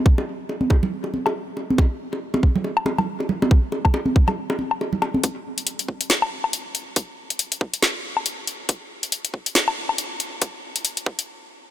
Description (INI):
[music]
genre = dubstep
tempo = 139 BPM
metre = 4/4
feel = swing 58% on 16ths, half-time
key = none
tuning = none
[part]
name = electronic kick drum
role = drums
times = 0.1-11.2 s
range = none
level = -17 LUFS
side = equal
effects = high-pass filter on kick
[part]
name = bongos and congas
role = percussion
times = 0.2-5.2 s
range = none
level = -24 LUFS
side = right 1 dB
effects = dub echo
[part]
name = garage drum kit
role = drums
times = 1.3-11.3 s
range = hi-hat, snare drum, woodblock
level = -22 LUFS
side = left 2 dB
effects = none
[sound]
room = light reverb, digital ambience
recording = none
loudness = -20 LUFS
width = side -12 dB against mid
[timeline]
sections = 0.0-5.2 A section; 5.2-11.7 B section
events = build-up 5.2-11.7; stop 11.3-11.7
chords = none